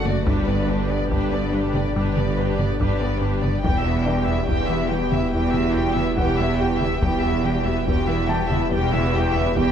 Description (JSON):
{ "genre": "cinematic, hybrid orchestral and electronic film score", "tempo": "71 BPM", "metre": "4/4", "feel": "straight", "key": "E minor", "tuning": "A4 = 441 Hz", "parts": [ { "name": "warm symphonic violin section", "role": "melody", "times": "0.0-9.7 s", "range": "B4 to G5", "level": "-28 LUFS", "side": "left 2 dB", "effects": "none" }, { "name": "dark symphonic violin section", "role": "second line", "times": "0.0-9.7 s", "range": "E4 to B4", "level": "-32 LUFS", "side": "left 1 dB", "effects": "none" }, { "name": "warm symphonic viola section", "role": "accompaniment", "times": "0.0-9.7 s", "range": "G3 to D4", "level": "-31 LUFS", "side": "equal", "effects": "none" }, { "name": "airy breathy pad", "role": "sustained chords", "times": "0.1-9.7 s", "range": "B2 to D5", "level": "-29 LUFS", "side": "equal", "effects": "chorus" }, { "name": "mellow French horn section", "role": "sustained chords", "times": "0.0-9.7 s", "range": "B2 to E4", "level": "-30 LUFS", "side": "left 2 dB", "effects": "none" }, { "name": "warm trombone section", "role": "sustained chords", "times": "0.0-9.7 s", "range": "B2 to G3", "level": "-33 LUFS", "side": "right 4 dB", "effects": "none" }, { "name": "clear symphonic double bass section", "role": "bass", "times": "0.0-9.7 s", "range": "E1 to G1", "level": "-30 LUFS", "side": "right 4 dB", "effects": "none" }, { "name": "punchy sub bass", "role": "bass", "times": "0.0-9.7 s", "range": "E1 to G1", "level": "-30 LUFS", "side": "left 1 dB", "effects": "none" }, { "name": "rich symphonic cello section", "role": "bass", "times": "0.0-9.7 s", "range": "E2 to G2", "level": "-27 LUFS", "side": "right 2 dB", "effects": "none" }, { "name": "warm grand piano", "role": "texture", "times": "0.0-9.7 s", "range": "D4 to A5", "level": "-34 LUFS", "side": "left 3 dB", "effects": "none" }, { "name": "resonant blip pluck", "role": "arpeggios", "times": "0.1-9.7 s", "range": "E3 to G4", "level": "-32 LUFS", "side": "equal", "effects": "none" }, { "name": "rubbery square bass", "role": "riff", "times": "0.1-9.7 s", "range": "E2 to G3", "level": "-29 LUFS", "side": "right 1 dB", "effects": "none" }, { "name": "taiko ensemble", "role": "drums", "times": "0.1-9.7 s", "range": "none", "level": "-28 LUFS", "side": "equal", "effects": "none" } ], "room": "moderate scoring stage reverb, RT60 1.7 s", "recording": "none", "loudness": "-19 LUFS", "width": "side -8 dB against mid", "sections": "0.0-9.7 A section", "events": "none", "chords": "0.3 G; 3.6 Em" }